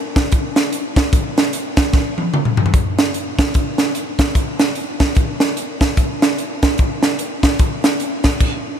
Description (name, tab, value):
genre	gospel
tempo	148 BPM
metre	4/4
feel	swing 60% on 8ths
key	none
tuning	none
part	crisp fusion drum kit	drums	0.2-8.5 s	crash cymbal, hi-hat, kick drum, snare drum, toms	-15 LUFS	equal	none
room	moderate huge ambient reverb, RT60 8.1 s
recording	dreamy mix soaked in reverb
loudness	-15 LUFS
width	side -8 dB against mid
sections	0.0-2.7 A section; 2.7-8.8 B section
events	drum fill 1.9-2.7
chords	none